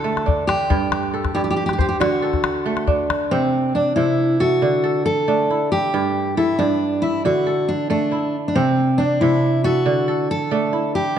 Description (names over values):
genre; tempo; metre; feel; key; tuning
west african traditional, West African string and xylophone music; 92 BPM (dotted quarters); 12/8; straight; unclear; A4 = 440 Hz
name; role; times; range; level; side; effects
fingerpicked steel-string acoustic guitar; melody; 0.0-11.2 s; C4 to A4; -19 LUFS; left 1 dB; none
kora; arpeggios; 0.0-11.2 s; G2 to E5; -21 LUFS; right 3 dB; none
calabash; percussion; 0.2-3.2 s; none; -23 LUFS; left 4 dB; none
room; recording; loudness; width
moderate scoring stage reverb, RT60 1.7 s; dark, warm production; -17 LUFS; side -9 dB against mid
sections
0.0-3.3 A section; 3.3-11.2 A section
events
none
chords
0.0 D; 0.7 G5; 2.0 D; 3.3 C; 4.6 D; 5.9 G5; 7.2 D; 8.6 C; 9.9 D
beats
0.04 | 0.70 1.35 2.01 2.66 | 3.32 3.97 4.63 5.28 | 5.94 6.59 7.24 7.90 | 8.55 9.21 9.86 10.51 | 11.17